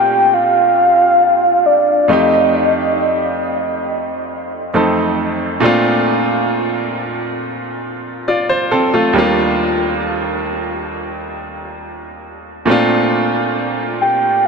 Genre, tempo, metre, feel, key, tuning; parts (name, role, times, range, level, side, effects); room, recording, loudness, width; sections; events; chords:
R&B; 68 BPM; 4/4; straight; Bb major; A4 = 442 Hz
soft octave-layered synth lead; melody; 0.0-3.0, 14.0-14.5 s; D5 to G5; -13 LUFS; equal; chorus, tremolo, tape echo
bright baby grand piano; accompaniment; 0.0-14.5 s; Eb2 to D5; -16 LUFS; right 1 dB
wet huge ambient reverb, RT60 8.7 s; dreamy mix soaked in reverb; -13 LUFS; side -4 dB against mid
0.0-14.5 A section
0.0 Bbmaj9; 2.1 F7; 5.6 Bbmaj9; 9.1 Ebmaj7; 12.7 Bbmaj9